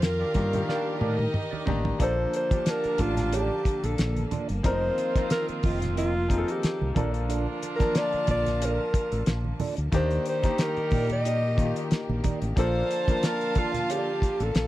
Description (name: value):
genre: lush 1970s-style soul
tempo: 91 BPM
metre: 4/4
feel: swing 54% on 16ths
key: Bb major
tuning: A4 = 440 Hz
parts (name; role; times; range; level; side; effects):
- warm alto saxophone; melody; 0.0-14.7 s; F4 to Eb5; -28 LUFS; equal; none
- warm studio violin section; second line; 0.0-2.0, 12.6-14.7 s; Eb4 to F5; -36 LUFS; right 1 dB; none
- rich studio string section; sustained chords; 0.0-14.7 s; D3 to A5; -38 LUFS; left 1 dB; none
- mellow electric guitar; riff; 0.0-14.5 s; Bb3 to Eb5; -36 LUFS; right 6 dB; wah
- fingered electric bass; bass; 0.0-14.7 s; F1 to Bb2; -28 LUFS; equal; none
- cloth-damped thuddy drum kit; drums; 0.0-14.7 s; hi-hat, kick drum, snare drum, toms; -26 LUFS; equal; none
- congas; percussion; 0.0-14.7 s; none; -35 LUFS; right 5 dB; none
- clear baby grand piano; accompaniment; 0.3-14.7 s; Eb3 to A5; -33 LUFS; left 3 dB; none
- mellow horn section; stabs; 0.7-14.7 s; D3 to A5; -36 LUFS; right 5 dB; tube saturation
room: small room ambience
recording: dry, close 1970s-style studio recording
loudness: -24 LUFS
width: side -15 dB against mid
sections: 0.0-2.0 A section; 2.0-14.7 B section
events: drum fill 0.7-2.0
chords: 0.0 Ebmaj7; 2.0 Bbmaj7; 4.6 F7sus4; 7.0 Bbmaj7; 9.9 Ebmaj7; 12.6 Bbmaj7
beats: 0.02 0.68 1.34 | 2.00 2.66 3.32 3.98 | 4.64 5.30 5.96 6.62 | 7.29 7.95 8.61 9.27 | 9.93 10.59 11.25 11.91 | 12.57 13.23 13.89 14.55